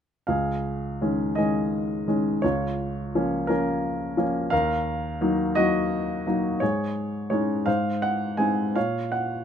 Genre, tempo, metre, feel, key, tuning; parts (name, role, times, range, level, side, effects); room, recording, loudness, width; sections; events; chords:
classical, lyrical solo piano; 57 BPM (dotted quarters); 6/8; rubato; Db major; A4 = 440 Hz
warm baby grand piano; solo; 0.3-9.4 s; Db2 to Ab5; -23 LUFS; equal
little or no reverb; close, detailed microphones; -23 LUFS; side -8 dB against mid
0.3-9.4 A section
0.3 Dbsus2; 2.4 Bbm/Db; 4.5 Ebm; 6.6 Absus4; 7.7 Ab; 8.8 Bbm